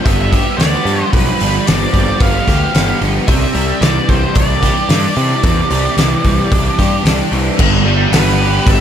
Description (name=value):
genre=rock, shoegaze and dream pop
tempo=112 BPM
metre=4/4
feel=straight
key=G mixolydian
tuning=A4 = 440 Hz
part: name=octave-fuzz lead guitar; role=melody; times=0.0-8.8 s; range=B4 to F5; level=-20 LUFS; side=right 2 dB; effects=distortion, slapback echo
part: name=overdriven electric guitar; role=riff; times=0.0-8.8 s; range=G2 to G4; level=-17 LUFS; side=right 1 dB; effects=analog chorus
part: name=fuzz picked electric bass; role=bass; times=0.1-8.8 s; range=G1 to C3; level=-16 LUFS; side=equal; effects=overdrive
part: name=loose indie drum kit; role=drums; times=0.1-8.8 s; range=crash cymbal, hi-hat, kick drum, snare drum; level=-15 LUFS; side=equal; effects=none
room=small room ambience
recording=none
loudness=-11 LUFS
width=side -9 dB against mid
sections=0.0-7.6 A section; 7.6-8.8 B section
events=none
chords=0.0 G7; 3.3 Cadd9; 7.6 G